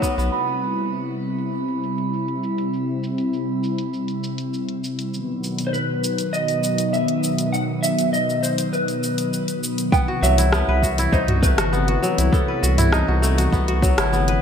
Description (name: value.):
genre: organic downtempo.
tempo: 100 BPM.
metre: 4/4.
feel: straight.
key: unclear.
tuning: A4 = 440 Hz.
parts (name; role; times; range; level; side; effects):
warm analog pad; sustained chords; 0.0-14.4 s; B2 to E4; -24 LUFS; left 1 dB; chorus, sidechain pumping, shimmer reverb.
kora; arpeggios; 0.0-2.0, 9.9-14.4 s; F#3 to B4; -24 LUFS; left 2 dB; ping-pong delay, shimmer reverb.
afro-pop drum kit; drums; 0.0-14.4 s; hi-hat, rim click, shaker, toms; -26 LUFS; equal; low-pass filter on perc, low-pass filter on snare, low-pass filter on toms, low-pass filter on hats, gated reverb.
electronic kick drum; drums; 0.0-0.1, 9.9-14.0 s; none; -20 LUFS; equal; none.
round analog bass; bass; 0.2-0.3, 10.2-14.4 s; G1 to C2; -20 LUFS; equal; sidechain pumping.
bronze singing bowl; texture; 0.3-9.9 s; B5; -31 LUFS; right 9 dB; shimmer reverb.
electric slide guitar; melody; 5.7-14.1 s; A4 to G5; -24 LUFS; right 1 dB; lush chorus, ping-pong delay, shimmer reverb.
room: moderate plate reverb, RT60 1.6 s.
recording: bright 1980s-style digital production.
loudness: -19 LUFS.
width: side -7 dB against mid.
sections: 0.3-9.9 A section; 9.9-14.4 B section.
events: none.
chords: 0.3 Cmaj7; 5.1 B; 9.9 Cmaj7.